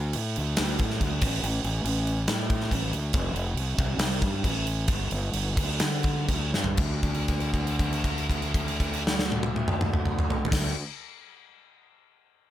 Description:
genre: hard rock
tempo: 119-140 BPM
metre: 4/4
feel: straight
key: D minor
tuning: A4 = 440 Hz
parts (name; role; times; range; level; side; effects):
- fuzz fingered electric bass; bass; 0.0-10.7 s; F1 to D3; -28 LUFS; equal; overdrive
- gated 80s drum kit; drums; 0.1-10.6 s; crash cymbal, kick drum, snare drum, toms; -27 LUFS; equal; none
room: little or no reverb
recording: none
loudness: -24 LUFS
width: side -12 dB against mid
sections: 0.0-6.8 A section; 6.8-10.8 B section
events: slowing down 3.2-6.8; drum fill 6.5; held note 6.8-10.5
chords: none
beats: 0.16 0.59 1.02 | 1.44 1.87 2.30 2.73 | 3.15 3.58 4.02 4.45 | 4.90 5.36 5.82 6.30 | 6.80 7.30 7.80 8.31 | 8.81 9.32 9.82 10.32

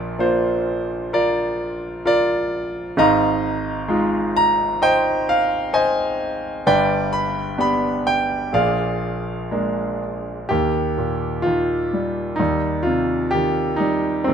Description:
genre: classical, lyrical solo piano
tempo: 64 BPM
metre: 4/4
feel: rubato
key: Eb major from 10.5 s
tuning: A4 = 440 Hz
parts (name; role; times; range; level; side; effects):
- bright concert grand piano; solo; 0.0-14.3 s; G1 to B5; -18 LUFS; equal; none
room: little or no reverb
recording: close, detailed microphones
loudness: -18 LUFS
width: side -7 dB against mid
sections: 0.0-10.5 A section; 10.5-14.3 B section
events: none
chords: 0.0 Bb; 3.0 Fm7/Ab; 6.7 G; 8.5 Bb7; 10.5 Eb; 12.4 Cm/Eb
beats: 0.20 1.13 2.05 | 2.97 3.89 4.81 5.74 | 6.67 7.59 8.54 9.52 | 10.50 11.45 12.40 13.33 | 14.27

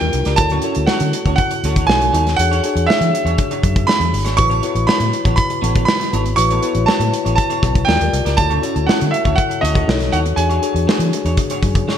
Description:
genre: polished 1980s jazz-funk pop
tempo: 120 BPM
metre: 4/4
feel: straight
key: A major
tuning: A4 = 445 Hz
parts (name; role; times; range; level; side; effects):
- clear baby grand piano; melody; 0.0-11.8 s; D#5 to C#6; -19 LUFS; right 3 dB; digital delay
- mellow tine electric piano; accompaniment; 0.0-12.0 s; C#4 to D5; -23 LUFS; left 5 dB; wide subtle chorus
- electric guitar at the edge of break-up; riff; 0.0-12.0 s; B3 to D5; -26 LUFS; right 4 dB; analog chorus
- vintage muted fingered electric bass; bass; 0.0-11.8 s; G1 to E3; -19 LUFS; equal; none
- modern studio drum kit; drums; 0.0-12.0 s; hi-hat, kick drum, snare drum; -19 LUFS; equal; gated reverb
room: moderate lush hall reverb, RT60 2.3 s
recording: bright 1980s-style digital production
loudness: -14 LUFS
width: side -9 dB against mid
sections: 0.0-12.0 A section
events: none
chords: 0.4 Dmaj7; 1.9 B9; 2.4 E13; 4.4 A69; 7.9 D#maj7; 8.4 Dmaj7; 9.9 B9; 10.4 E13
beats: | 0.39 0.89 1.39 1.89 | 2.38 2.88 3.38 3.88 | 4.38 4.88 5.38 5.88 | 6.38 6.88 7.38 7.88 | 8.38 8.88 9.38 9.88 | 10.38 10.88 11.38 11.88

